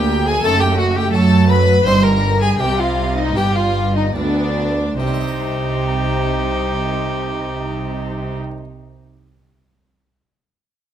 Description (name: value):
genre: classical, baroque-style concerto movement with solo episodes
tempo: 70-88 BPM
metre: 4/4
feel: straight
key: C minor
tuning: A4 = 440 Hz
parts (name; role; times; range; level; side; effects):
- warm chamber violin section; melody; 0.0-8.4 s; C5 to C6; -24 LUFS; left 3 dB; none
- warm violin; melody; 0.0-8.4 s; D4 to C5; -22 LUFS; left 1 dB; none
- warm chamber violin section; second line; 0.0-8.4 s; D4 to C5; -25 LUFS; left 3 dB; none
- harpsichord; accompaniment; 0.0-8.6 s; D2 to C5; -30 LUFS; equal; none
- warm chamber viola section; accompaniment; 0.0-8.4 s; G3 to Eb4; -26 LUFS; right 3 dB; none
- rich symphonic double bass section; bass; 0.0-8.4 s; F#1 to F#2; -21 LUFS; right 2 dB; none
- warm chamber cello section; bass; 0.0-8.4 s; D2 to F#3; -21 LUFS; right 2 dB; none
room: light reverb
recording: close, detailed microphones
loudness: -15 LUFS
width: side -10 dB against mid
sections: 0.0-5.0 A section; 5.0-8.4 B section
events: slowing down 0.0-5.0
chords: 0.4 F#dim7; 1.9 Cm/G; 3.4 G; 5.0 Cm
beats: 0.44 1.14 | 1.85 2.59 3.36 4.16 | 5.00 5.84 6.69 7.54